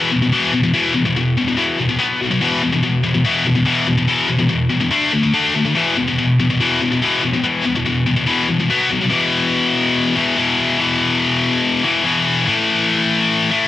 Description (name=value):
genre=metal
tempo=143 BPM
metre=4/4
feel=straight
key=unclear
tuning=A4 = 443 Hz
part: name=high-gain distorted guitar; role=solo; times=0.0-13.7 s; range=E2 to D4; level=-14 LUFS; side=left 2 dB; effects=distortion, cassette tape, analog delay
room=little or no reverb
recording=home recording on cassette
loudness=-14 LUFS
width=side -13 dB against mid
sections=0.0-9.1 A section; 9.1-13.7 B section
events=none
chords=0.0 E5; 2.0 B5; 2.4 E5; 4.9 D5; 5.8 E5; 8.7 B5; 9.1 E5; 12.5 A5